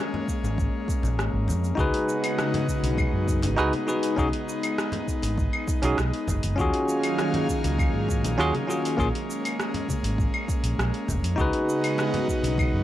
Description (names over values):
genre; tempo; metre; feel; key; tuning
sunset chillout; 100 BPM; 4/4; straight; unclear; A4 = 444 Hz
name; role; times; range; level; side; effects
airy breathy pad; sustained chords; 0.0-12.8 s; Db3 to F5; -29 LUFS; left 1 dB; chorus
bongos and congas; percussion; 0.0-12.6 s; none; -35 LUFS; left 2 dB; none
deep house drum kit; drums; 0.3-12.7 s; cabasa, claves, hi-hat, rim click; -32 LUFS; equal; none
electronic kick drum; drums; 0.3-12.7 s; none; -28 LUFS; equal; none
mellow fretless electric bass; bass; 0.4-12.8 s; F1 to Ab2; -26 LUFS; equal; none
bell-like tine electric piano; accompaniment; 1.8-12.8 s; Bb3 to Cb5; -27 LUFS; moving between left 3 dB and right 3 dB; auto-pan, tape echo
room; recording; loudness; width
light reverb; dry, gritty hardware recording; -23 LUFS; side -13 dB against mid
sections
0.0-1.8 A section; 1.8-12.8 B section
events
kick drops out 1.2-1.8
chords
0.0 Bbm7; 1.8 Db9sus4; 4.2 B6; 6.6 Ebm11; 9.0 Bbm7; 11.4 Db9sus4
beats
0.58 1.18 | 1.78 2.38 2.98 3.58 | 4.18 4.78 5.38 5.98 | 6.58 7.18 7.78 8.38 | 8.98 9.58 10.18 10.78 | 11.38 11.98 12.58